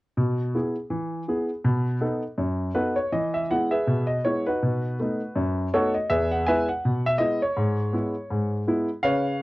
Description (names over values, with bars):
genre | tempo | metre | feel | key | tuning
jazz, stride piano | 163 BPM | 4/4 | swing 60% on 8ths | E major | A4 = 440 Hz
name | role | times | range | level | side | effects
clear concert grand piano | solo | 0.2-9.4 s | E2 to G#5 | -22 LUFS | equal | none
room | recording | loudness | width
light reverb | home recording on cassette | -22 LUFS | side -19 dB against mid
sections
0.2-3.1 A section; 3.1-9.4 B section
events
none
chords
0.2 E/B; 1.7 B7; 3.1 E; 4.6 B7; 6.1 E; 7.6 E/G#